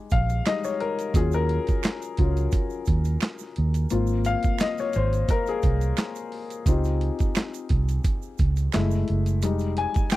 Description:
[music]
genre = R&B, neo-soul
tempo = 87 BPM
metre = 4/4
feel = swing 53% on 16ths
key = Ab major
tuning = A4 = 439 Hz
[part]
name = warm upright piano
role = accompaniment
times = 0.0-10.2 s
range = Gb3 to Ab5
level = -28 LUFS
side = left 5 dB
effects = none
[part]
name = vintage muted fingered electric bass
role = bass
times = 0.1-10.0 s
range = F1 to Eb2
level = -23 LUFS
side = right 1 dB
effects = none
[part]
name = boom bap sampler-style drum kit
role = drums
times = 0.1-10.2 s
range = handclaps, hi-hat, kick drum, snare drum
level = -24 LUFS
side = right 1 dB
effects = none
[part]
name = egg shaker and finger snaps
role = percussion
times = 0.1-10.2 s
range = none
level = -39 LUFS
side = right 25 dB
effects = none
[sound]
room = little or no reverb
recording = dry, close 1970s-style studio recording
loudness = -22 LUFS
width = side -16 dB against mid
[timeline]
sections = 0.0-10.2 A section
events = upright piano solo 0.0-10.2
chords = 0.0 Fm9; 1.1 Ebm9; 3.9 Ab69; 6.7 Dbmaj9#11; 8.7 Gbm9; 9.4 Fm9

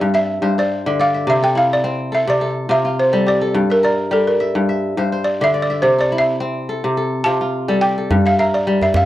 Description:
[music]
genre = west african traditional, West African string and xylophone music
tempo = 106 BPM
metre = 4/4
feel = swing 54% on 16ths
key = G dorian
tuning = A4 = 440 Hz
[part]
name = balafon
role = melody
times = 0.0-9.1 s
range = A4 to A5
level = -17 LUFS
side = right 1 dB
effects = none
[part]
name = kora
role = arpeggios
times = 0.0-9.1 s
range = G2 to E5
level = -18 LUFS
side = left 1 dB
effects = none
[part]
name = djembe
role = percussion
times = 8.1-9.1 s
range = none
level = -19 LUFS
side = right 1 dB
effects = none
[sound]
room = light reverb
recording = dry, close 1970s-style studio recording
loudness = -15 LUFS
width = side -14 dB against mid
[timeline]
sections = 0.0-9.1 A section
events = balafon solo 0.0-9.1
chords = 0.0 Gm; 1.3 C; 3.6 Gm; 5.8 C; 8.1 Gm

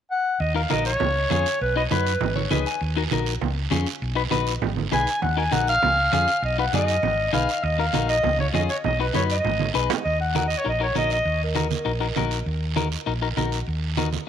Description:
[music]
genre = latin, cumbia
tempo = 199 BPM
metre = 4/4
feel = straight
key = Eb minor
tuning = A4 = 441 Hz
[part]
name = warm clarinet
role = melody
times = 0.1-2.5, 4.9-12.3 s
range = Bb4 to Ab5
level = -23 LUFS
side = equal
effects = tape echo
[part]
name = hollow-body short-scale fingered electric bass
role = bass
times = 0.4-14.2 s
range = Ab1 to F#2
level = -26 LUFS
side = equal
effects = none
[part]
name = guiro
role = percussion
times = 0.4-14.3 s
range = none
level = -34 LUFS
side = right 12 dB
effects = none
[part]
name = clean electric guitar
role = accompaniment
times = 0.5-14.1 s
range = Db4 to Ab5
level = -27 LUFS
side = left 10 dB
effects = none
[part]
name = congas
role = percussion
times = 0.7-14.3 s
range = none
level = -28 LUFS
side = right 9 dB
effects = none
[sound]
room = light reverb, small room ambience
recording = 1960s-style stereo with parts hard left and right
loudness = -20 LUFS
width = side -9 dB against mid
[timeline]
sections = 0.4-10.1 A section; 10.1-14.3 B section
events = clean electric guitar fill 2.2-2.8; drum fill 9.6-10.1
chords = 0.4 Ebm; 1.0 Db; 1.6 B; 2.2 Abm; 2.8 Ebm; 3.4 Db; 4.0 B; 4.6 Abm; 5.2 Ebm; 5.8 Db; 6.4 B; 7.0 Abm; 7.6 Ebm; 8.2 Db; 8.8 B; 9.4 Abm; 10.1 Ebm

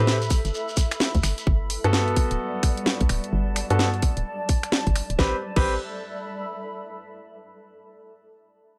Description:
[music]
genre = UK garage, two-step garage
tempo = 129 BPM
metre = 4/4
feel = swing 62% on 16ths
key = unclear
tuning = A4 = 439 Hz
[part]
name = bright grand piano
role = stabs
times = 0.0-5.7 s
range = B3 to B4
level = -29 LUFS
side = equal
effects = low-pass filter, tape echo
[part]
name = hollow knocking FM bass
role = bass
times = 0.0-5.8 s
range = D1 to A2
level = -27 LUFS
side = equal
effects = none
[part]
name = granular cloud pad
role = texture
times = 0.0-7.0 s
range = G3 to B5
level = -36 LUFS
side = equal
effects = built-in reverb, sidechain pumping
[part]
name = garage drum kit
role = drums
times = 0.1-5.6 s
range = crash cymbal, finger snaps, hi-hat, snare drum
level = -29 LUFS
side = equal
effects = none
[part]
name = shekere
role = percussion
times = 0.1-1.4 s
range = none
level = -36 LUFS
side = equal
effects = none
[part]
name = electronic kick drum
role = drums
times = 0.3-5.6 s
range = none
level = -24 LUFS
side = equal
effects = none
[sound]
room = studio ambience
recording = dry, gritty hardware recording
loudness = -24 LUFS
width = mono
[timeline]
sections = 0.0-5.2 A section; 5.2-7.0 B section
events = none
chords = 0.0 A7sus2; 1.5 Gmaj9; 5.2 Am9

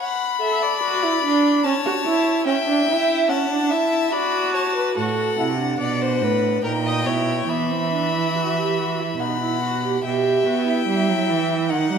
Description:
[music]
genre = classical, baroque-style fugue for string quartet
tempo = 72 BPM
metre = 3/4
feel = straight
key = D major, E minor from 5.0 s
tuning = A4 = 439 Hz
[part]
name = clear violin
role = melody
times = 0.0-12.0 s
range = F#5 to B5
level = -25 LUFS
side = left 8 dB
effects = none
[part]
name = rich violin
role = second line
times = 0.0-12.0 s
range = A4 to F#5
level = -25 LUFS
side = left 2 dB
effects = none
[part]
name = rich viola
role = accompaniment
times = 0.4-12.0 s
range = B3 to A4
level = -22 LUFS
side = right 3 dB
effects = none
[part]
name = rich cello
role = bass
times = 5.0-12.0 s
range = A2 to B3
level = -24 LUFS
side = right 5 dB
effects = none
[sound]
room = wet scoring stage reverb, RT60 2.1 s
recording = none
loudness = -18 LUFS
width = side -7 dB against mid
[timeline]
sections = 0.0-5.0 A section; 5.0-10.0 B section; 10.0-12.0 C section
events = none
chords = 0.0 D; 1.7 A; 2.5 A7; 4.1 D/F#; 5.0 F#dim/A; 6.6 A#dim7; 7.5 Bsus4/E; 9.2 B; 10.0 Em/B

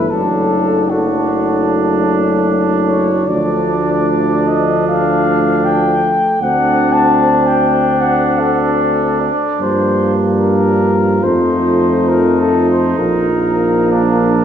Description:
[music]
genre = classical, hymn-like piece for brass band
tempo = 64-79 BPM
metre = 4/4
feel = rubato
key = D major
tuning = A4 = 440 Hz
[part]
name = mellow cornet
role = melody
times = 0.0-14.4 s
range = F#4 to A5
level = -17 LUFS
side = left 4 dB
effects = none
[part]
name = clear flugelhorn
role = second line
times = 0.0-14.4 s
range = D4 to Eb4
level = -19 LUFS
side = right 5 dB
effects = none
[part]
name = clear euphonium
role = accompaniment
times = 0.0-14.4 s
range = A3 to C4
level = -19 LUFS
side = left 2 dB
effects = none
[part]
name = warm trombone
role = accompaniment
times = 0.0-14.4 s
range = F3 to A3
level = -20 LUFS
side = right 3 dB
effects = none
[part]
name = clear tuba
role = bass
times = 0.0-14.4 s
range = F#1 to G2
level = -17 LUFS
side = equal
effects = none
[sound]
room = wet recital hall reverb, RT60 1.5 s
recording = heard from further back in the room, nothing above 7.7 kHz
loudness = -12 LUFS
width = side -8 dB against mid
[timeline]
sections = 0.0-14.4 A section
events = none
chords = 0.1 D/F#; 3.3 Dm; 6.4 D5; 9.6 Gm7; 11.2 F7; 13.0 Bb

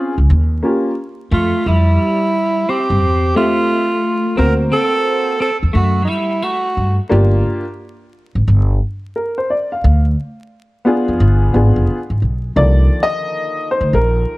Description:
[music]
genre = hip hop, jazz-hop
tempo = 88 BPM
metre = 4/4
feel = swing 64% on 16ths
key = C minor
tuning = A4 = 439 Hz
[part]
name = warm upright piano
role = accompaniment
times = 0.0-14.4 s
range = D3 to F5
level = -17 LUFS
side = left 1 dB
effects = none
[part]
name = upright bass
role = bass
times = 0.2-14.2 s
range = F1 to G2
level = -13 LUFS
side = equal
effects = none
[part]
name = breathy tenor saxophone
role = melody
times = 1.3-7.0 s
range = Eb4 to Bb4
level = -17 LUFS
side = right 2 dB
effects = slapback echo
[part]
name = clean electric guitar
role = second line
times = 1.3-7.0 s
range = F#3 to C4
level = -21 LUFS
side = left 2 dB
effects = analog chorus, slapback echo
[sound]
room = light reverb, small room ambience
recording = dark, warm production, vinyl crackle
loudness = -13 LUFS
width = side -19 dB against mid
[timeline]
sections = 0.0-12.6 A section; 12.6-14.4 B section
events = upright piano solo 12.6-14.4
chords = 0.3 Eb9; 1.7 Fmaj9; 4.4 D7b13 (rootless); 7.1 Gm7; 9.8 Ddim; 11.2 G7b9; 12.6 Cm11

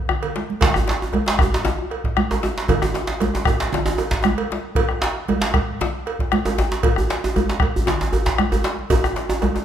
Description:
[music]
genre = west african traditional, West African drum ensemble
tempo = 116 BPM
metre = 4/4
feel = straight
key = none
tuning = none
[part]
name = bombo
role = percussion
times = 0.1-9.6 s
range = none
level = -23 LUFS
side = equal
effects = none
[part]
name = congas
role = percussion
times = 0.1-9.5 s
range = none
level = -26 LUFS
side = right 4 dB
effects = none
[part]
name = djembe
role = percussion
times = 0.1-9.6 s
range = none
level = -26 LUFS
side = left 3 dB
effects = none
[part]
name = cowbell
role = percussion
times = 0.2-9.5 s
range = none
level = -28 LUFS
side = right 4 dB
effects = none
[part]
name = djembe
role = percussion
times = 0.6-9.6 s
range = none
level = -22 LUFS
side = right 1 dB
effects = none
[sound]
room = moderate recital hall reverb, RT60 1.5 s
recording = minimal, uncompressed stereo recording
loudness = -18 LUFS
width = side -10 dB against mid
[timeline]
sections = 0.6-9.6 A section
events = drum fill 0.0-0.6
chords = none

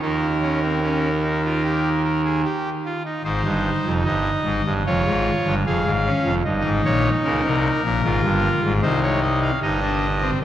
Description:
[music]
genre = classical, baroque-style 3-part fugue for pipe organ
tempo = 75 BPM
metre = 4/4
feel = straight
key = Ab major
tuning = A4 = 439 Hz
[part]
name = pipe organ, trumpet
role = solo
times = 0.0-10.4 s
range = F1 to F5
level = -18 LUFS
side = equal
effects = none
[sound]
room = wet church reverb, RT60 3.4 s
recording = worn, warbling old tape, cassette tape, warbly pitch drift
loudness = -18 LUFS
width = side -11 dB against mid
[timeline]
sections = 0.0-3.2 A section; 3.2-10.4 B section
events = none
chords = 0.0 Eb; 3.2 Ab; 4.8 Db/F; 6.4 Eb7/G; 8.0 Ab; 9.6 Eb/G

